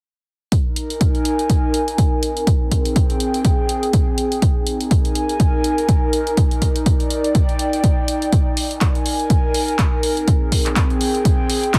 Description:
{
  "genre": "piano house",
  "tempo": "123 BPM",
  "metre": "4/4",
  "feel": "swing 57% on 16ths",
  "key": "Bb mixolydian",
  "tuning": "A4 = 440 Hz",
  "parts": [
    { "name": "electronic kick drum", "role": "drums", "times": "0.5-11.8 s", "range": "none", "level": "-20 LUFS", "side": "equal", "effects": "none" },
    { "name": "punchy analog drum machine", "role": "drums", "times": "0.5-11.8 s", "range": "handclaps, hi-hat", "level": "-28 LUFS", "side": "equal", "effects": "none" },
    { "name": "airy breathy pad", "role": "texture", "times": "0.5-11.8 s", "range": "C4 to Ab5", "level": "-24 LUFS", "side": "equal", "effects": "chorus, sidechain pumping" }
  ],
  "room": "light reverb",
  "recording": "heavily compressed radio sound, multiband compression",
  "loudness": "-18 LUFS",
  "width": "mono",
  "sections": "0.5-11.8 A section",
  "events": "none",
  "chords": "0.5 Bb7sus4; 2.2 Abmaj7; 4.4 Bb7sus4; 6.4 Ebmaj7; 8.3 Bb7sus4; 10.0 Abmaj7"
}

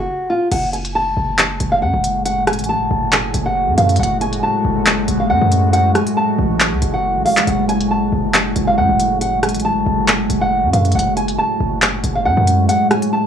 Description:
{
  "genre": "hip hop, drill",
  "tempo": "138 BPM",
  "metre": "4/4",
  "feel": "half-time",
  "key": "F# harmonic minor",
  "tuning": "A4 = 440 Hz",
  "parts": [
    { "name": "nylon-string guitar", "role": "melody", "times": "0.0-13.3 s", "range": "E#4 to A5", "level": "-18 LUFS", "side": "equal", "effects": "low-pass filter" },
    { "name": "hard-hitting 808-style bass", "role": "bass", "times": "0.0-12.7 s", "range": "F#1 to F#2", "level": "-20 LUFS", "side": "equal", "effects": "none" },
    { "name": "deep dark ambient pad", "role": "sustained chords", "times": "1.2-13.3 s", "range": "A2 to F#4", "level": "-20 LUFS", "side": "equal", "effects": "chorus, built-in reverb" },
    { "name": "drill drum kit", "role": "drums", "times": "0.5-13.1 s", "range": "crash cymbal, handclaps, hi-hat, rim click", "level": "-18 LUFS", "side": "equal", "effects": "none" }
  ],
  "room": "little or no reverb",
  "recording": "dry, gritty hardware recording, cassette tape, small room ambience",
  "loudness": "-14 LUFS",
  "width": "side -8 dB against mid",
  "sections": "0.5-13.3 A section",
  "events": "break 0.1-0.5; kick muted 12.7-13.3",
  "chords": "0.0 N.C.; 0.5 F#madd9"
}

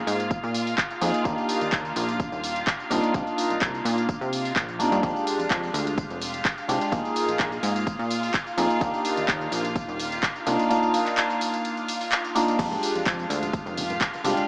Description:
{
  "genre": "filtered disco house",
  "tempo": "127 BPM",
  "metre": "4/4",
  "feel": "straight",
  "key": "F dorian",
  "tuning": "A4 = 440 Hz",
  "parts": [
    { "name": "clear concert grand piano", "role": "accompaniment", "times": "0.0-14.5 s", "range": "Ab3 to Ab4", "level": "-29 LUFS", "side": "equal", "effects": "phaser, sidechain pumping, tape echo" },
    { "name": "muted chamber string section", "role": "sustained chords", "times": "0.0-14.5 s", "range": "F4 to F5", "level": "-34 LUFS", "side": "equal", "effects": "sidechain pumping" },
    { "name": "plucky analog bass", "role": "bass", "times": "0.0-14.3 s", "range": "Eb1 to C3", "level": "-32 LUFS", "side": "equal", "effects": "sidechain pumping" },
    { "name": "house drum kit", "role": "drums", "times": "0.1-14.5 s", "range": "crash cymbal, handclaps, hi-hat, ride cymbal, tambourine", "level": "-32 LUFS", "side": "equal", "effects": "sidechain pumping on perc, sidechain pumping on hats, sidechain pumping on cymbals" },
    { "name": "electronic kick drum", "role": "drums", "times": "0.3-14.1 s", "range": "none", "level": "-32 LUFS", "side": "equal", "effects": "none" },
    { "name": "tube shaker and congas", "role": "percussion", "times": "12.6-14.5 s", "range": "none", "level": "-43 LUFS", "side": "equal", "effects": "sidechain pumping on perc, tape echo" }
  ],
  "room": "moderate spring reverb, RT60 2.2 s",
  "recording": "echo-heavy mix, small speaker sound",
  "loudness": "-25 LUFS",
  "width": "mono",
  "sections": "0.0-14.5 A section",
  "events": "none",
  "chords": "0.0 Bb7sus4; 1.3 Ebmaj7; 2.9 Cm11; 5.0 Fm69; 6.9 Bb7sus4; 8.8 Ebmaj7; 10.5 Cm11 (rootless); 12.6 Fm69"
}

